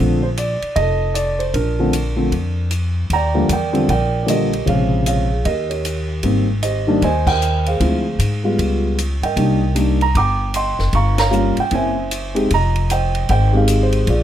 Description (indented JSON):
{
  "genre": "jazz piano trio",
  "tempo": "153 BPM",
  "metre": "4/4",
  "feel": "swing 64% on 8ths",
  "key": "Bb major, Eb major from 3.1 s",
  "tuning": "A4 = 440 Hz",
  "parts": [
    { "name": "dark grand piano", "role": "melody", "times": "0.0-14.2 s", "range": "C3 to D6", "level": "-18 LUFS", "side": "right 1 dB", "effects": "none" },
    { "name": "upright bass", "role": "bass", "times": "0.0-14.2 s", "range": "F1 to Ab2", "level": "-19 LUFS", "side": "equal", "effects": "none" },
    { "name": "compact cocktail drum kit", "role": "drums", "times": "0.4-14.2 s", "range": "crash cymbal, hi-hat, kick drum, ride cymbal, snare drum", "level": "-27 LUFS", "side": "left 1 dB", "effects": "none" }
  ],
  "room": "light reverb",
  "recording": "none",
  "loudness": "-15 LUFS",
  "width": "side -11 dB against mid",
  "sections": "0.0-3.1 A section; 3.1-14.2 B section",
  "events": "band accent 7.2, 11.1",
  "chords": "0.0 Bbmaj9; 3.1 Ebmaj7; 4.7 Bbm7; 5.4 Eb7; 6.2 Abmaj9; 7.8 Dm7b5; 8.6 Db7#11; 9.4 Cm7; 10.9 Gm7b5; 11.7 Gb7#11; 12.5 Fm7",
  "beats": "0.37 0.76 1.15 | 1.54 1.93 2.32 2.71 | 3.10 3.49 3.88 4.28 | 4.67 5.06 5.45 5.84 | 6.23 6.63 7.02 7.41 | 7.80 8.20 8.59 8.98 | 9.37 9.76 10.16 10.55 | 10.94 11.33 11.72 12.12 | 12.51 12.90 13.29 13.68 | 14.07"
}